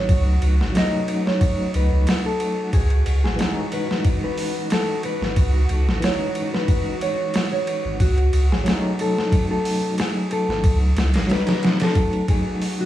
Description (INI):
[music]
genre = trip hop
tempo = 91 BPM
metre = 4/4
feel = straight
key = unclear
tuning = A4 = 440 Hz
[part]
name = mellow electric guitar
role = melody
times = 0.0-12.9 s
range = F#4 to D#5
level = -26 LUFS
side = left 1 dB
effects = vintage 12-bit sampler grit, tape echo
[part]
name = overdriven tine electric piano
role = accompaniment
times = 0.0-12.9 s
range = E3 to D#4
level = -25 LUFS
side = equal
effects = tremolo, low-pass filter, tape echo
[part]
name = warm sub bass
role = bass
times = 0.0-11.3 s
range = G#1 to C#2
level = -19 LUFS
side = equal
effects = none
[part]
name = bowed-like drone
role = texture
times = 0.0-12.9 s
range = F#4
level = -34 LUFS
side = right 1 dB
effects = built-in reverb
[part]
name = dusty soul sampler-style drum kit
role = drums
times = 0.1-12.8 s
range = hi-hat, kick drum, ride cymbal, snare drum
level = -23 LUFS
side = equal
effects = overdrive
[sound]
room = little or no reverb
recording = vinyl crackle, small room reverb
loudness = -18 LUFS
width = side -13 dB against mid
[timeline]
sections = 0.0-12.9 A section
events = none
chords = 0.0 D#m7b5; 2.7 C#madd9; 8.0 D#m7b5